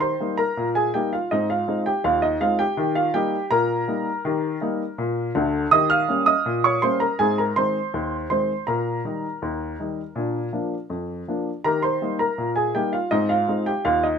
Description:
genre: ragtime piano.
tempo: 81 BPM.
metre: 2/4.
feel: straight.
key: Eb major.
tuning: A4 = 442 Hz.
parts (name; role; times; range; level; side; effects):
warm upright piano; solo; 0.0-14.2 s; D2 to F6; -20 LUFS; equal; none.
room: light reverb.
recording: minimal, uncompressed stereo recording.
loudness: -20 LUFS.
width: side -6 dB against mid.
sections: 0.0-14.2 A section.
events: none.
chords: 0.0 Eb; 1.3 Ab; 2.8 Eb; 5.7 Eb7; 7.2 Ab; 8.7 Eb/Bb; 10.2 Bb; 11.6 Eb; 13.1 Ab.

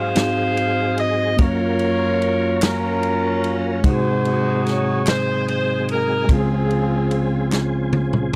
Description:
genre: slow gospel.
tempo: 49 BPM (dotted quarters).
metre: 6/8.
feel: straight.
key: unclear.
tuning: A4 = 438 Hz.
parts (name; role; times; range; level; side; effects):
warm horn section; melody; 0.0-7.5 s; C4 to F5; -24 LUFS; equal; none.
bright tine electric piano; accompaniment; 0.0-8.4 s; Db2 to C5; -24 LUFS; equal; none.
tonewheel organ; sustained chords; 0.0-8.4 s; C3 to Bb4; -29 LUFS; equal; slow rotary speaker, chorus vibrato.
swinging big-band drum kit; drums; 0.2-8.4 s; kick drum, ride cymbal, snare drum, toms; -21 LUFS; equal; none.
group handclap; percussion; 0.2-7.9 s; none; -33 LUFS; equal; none.
room: small room ambience.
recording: dry, close 1970s-style studio recording.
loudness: -20 LUFS.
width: mono.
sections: 0.0-8.4 A section.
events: drum fill 7.5-8.4.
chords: 0.0 Ab7; 1.4 Gbmaj7; 3.8 Ab7; 6.3 Dbmaj7.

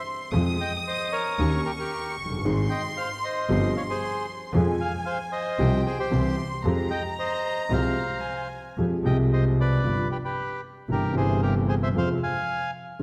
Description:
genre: tango.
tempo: 114 BPM.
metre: 4/4.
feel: rubato.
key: F minor.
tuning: A4 = 440 Hz.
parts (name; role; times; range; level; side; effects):
bandoneon; melody; 0.0-12.7 s; G4 to Ab5; -32 LUFS; equal; none.
warm chamber violin section; second line; 0.0-8.8 s; G5 to Eb6; -35 LUFS; equal; none.
warm grand piano; accompaniment; 0.3-13.0 s; F1 to Ab4; -29 LUFS; equal; none.
clear double bass; bass; 0.3-13.0 s; Gb1 to F2; -30 LUFS; equal; none.
room: wet concert hall reverb, RT60 1.8 s.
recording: recorded in a church or concert hall.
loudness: -26 LUFS.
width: mono.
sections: 0.0-8.8 A section; 8.8-13.0 A section.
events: none.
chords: 0.3 Fm; 1.4 Eb7; 2.4 Ab; 3.5 Csus4/G; 4.5 Fm; 5.6 Csus4; 6.1 C; 6.6 Fmadd9; 9.8 G7; 10.9 C/G; 11.9 Fm.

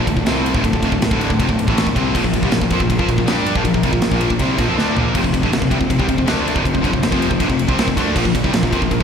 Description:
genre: heavy metal.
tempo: 159 BPM.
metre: 4/4.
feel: straight.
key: unclear.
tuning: A4 = 441 Hz.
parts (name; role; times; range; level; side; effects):
dark chamber string section; sustained chords; 0.0-9.0 s; Bb2 to C5; -29 LUFS; equal; none.
distorted electric guitar; riff; 0.0-9.0 s; D2 to G4; -21 LUFS; left 12 dB; overdrive, slapback echo.
distorted electric guitar; riff; 0.0-9.0 s; D2 to G4; -26 LUFS; equal; none.
high-gain distorted guitar; riff; 0.0-9.0 s; D2 to G4; -22 LUFS; right 13 dB; distortion.
fuzz picked electric bass; bass; 0.0-9.0 s; D1 to G2; -22 LUFS; right 1 dB; overdrive.
tight metal drum kit; drums; 0.1-9.0 s; crash cymbal, kick drum, ride cymbal, snare drum, toms; -20 LUFS; right 1 dB; none.
room: light reverb.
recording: live gig heard through the venue's PA, recital hall reverb.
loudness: -15 LUFS.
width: side -7 dB against mid.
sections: 0.0-9.0 A section.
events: drum fill 4.8-5.2.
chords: 0.0 Dm; 2.1 Bb5; 5.2 F5; 8.2 Bb5.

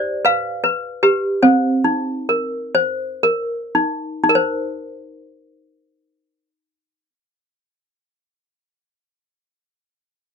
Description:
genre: children's music, lullaby.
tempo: 36-54 BPM (dotted quarters).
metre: 6/8.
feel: straight.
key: C minor.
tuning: A4 = 440 Hz.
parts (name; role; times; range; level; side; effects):
toy piano; solo; 0.0-8.0 s; C4 to F5; -16 LUFS; equal; none.
room: light reverb.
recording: dry, close 1970s-style studio recording.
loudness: -16 LUFS.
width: side -6 dB against mid.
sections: 0.0-4.3 A section; 4.3-10.3 B section.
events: slowing down 0.0-4.3.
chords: 0.3 G7; 1.4 Cm7.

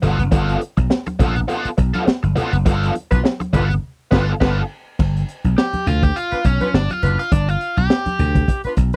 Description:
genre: funk.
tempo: 103 BPM.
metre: 4/4.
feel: swing 56% on 16ths.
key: G mixolydian.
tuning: A4 = 440 Hz.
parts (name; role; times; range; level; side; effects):
crunchy overdriven guitar; accompaniment; 0.0-8.6 s; B3 to A4; -25 LUFS; equal; wah.
vintage slap bass; bass; 0.0-8.9 s; F#1 to D2; -21 LUFS; equal; none.
crunchy breakbeat drum kit; drums; 0.0-9.0 s; crash cymbal, hi-hat, kick drum, snare drum; -20 LUFS; equal; none.
congas; percussion; 0.0-9.0 s; none; -29 LUFS; equal; none.
warm horn section; second line; 3.1-8.7 s; B3 to B4; -26 LUFS; equal; none.
room: little or no reverb.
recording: dry, close 1970s-style studio recording.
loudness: -19 LUFS.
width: mono.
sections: 0.0-5.0 A section; 5.0-9.0 B section.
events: band accent 2.7-5.0; overdriven electric guitar solo 5.0-9.0.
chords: 0.0 G9; 5.0 G7.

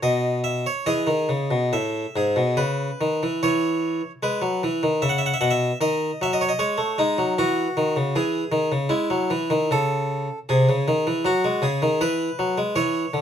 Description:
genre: classical, baroque-style suite movement for harpsichord.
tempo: 69-80 BPM.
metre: 3/4.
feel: rubato.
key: E major.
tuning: A4 = 440 Hz.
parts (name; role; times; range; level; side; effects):
harpsichord; solo; 0.0-13.2 s; G#2 to F#5; -20 LUFS; equal; none.
room: light reverb.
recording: close, detailed microphones.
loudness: -20 LUFS.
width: side -9 dB against mid.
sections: 0.0-3.4 A section; 3.4-13.2 B section.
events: none.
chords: 0.0 N.C.; 0.9 E; 3.4 E5; 5.8 D#m7b5; 7.4 C#madd11; 8.1 C#m; 10.5 G#7(no3); 12.0 Eadd9.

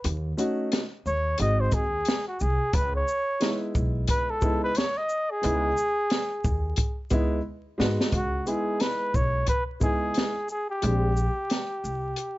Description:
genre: hip hop, jazz-hop.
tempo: 89 BPM.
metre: 4/4.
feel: swing 61% on 16ths.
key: C# minor.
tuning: A4 = 439 Hz.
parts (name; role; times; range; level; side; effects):
breathy flugelhorn; melody; 0.0-12.4 s; F#4 to D#5; -27 LUFS; equal; plate reverb.
upright bass; bass; 0.0-12.1 s; G#1 to G#2; -28 LUFS; equal; none.
open jazz drum kit; drums; 0.0-12.4 s; hi-hat, kick drum, shaker, snare drum; -27 LUFS; equal; none.
dark baby grand piano; accompaniment; 0.4-11.1 s; G#3 to G4; -30 LUFS; equal; none.
room: light reverb.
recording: vinyl crackle, nothing above 7.8 kHz.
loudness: -24 LUFS.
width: side -18 dB against mid.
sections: 0.0-8.1 A section; 8.1-12.4 B section.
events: flugelhorn solo 0.0-8.1; drum fill 7.5-8.1.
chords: 0.0 D#m7b5; 1.4 G#7; 2.7 C#m9; 10.8 A#13.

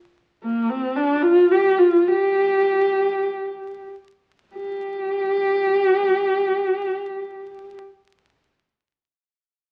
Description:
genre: mongolian traditional.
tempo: free time.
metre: none.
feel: none.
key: G yu mode.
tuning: A4 = 440 Hz.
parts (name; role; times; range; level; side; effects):
warm horsehead fiddle; melody; 0.4-7.8 s; Bb3 to G4; -21 LUFS; equal; none.
room: wet studio reverb, RT60 0.8 s.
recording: very old 78 rpm record, vinyl crackle.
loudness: -20 LUFS.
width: mono.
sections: 0.0-4.5 A section; 4.5-9.7 B section.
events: slowing down 0.0-4.5.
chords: none.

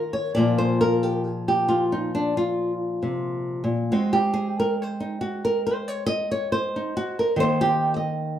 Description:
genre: solo jazz.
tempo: 69 BPM.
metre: 4/4.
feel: swing 69% on 8ths, rubato.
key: unclear.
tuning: A4 = 440 Hz.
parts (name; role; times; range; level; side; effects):
flamenco guitar; solo; 0.0-8.4 s; Bb2 to Eb5; -21 LUFS; equal; none.
room: moderate large studio reverb, RT60 0.9 s.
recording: band playing live in one room.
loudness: -21 LUFS.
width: side -10 dB against mid.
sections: 0.0-8.4 A section.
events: nylon-string guitar solo 0.0-8.4.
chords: 0.4 Bbsus2; 3.9 Ab; 7.4 Eb5.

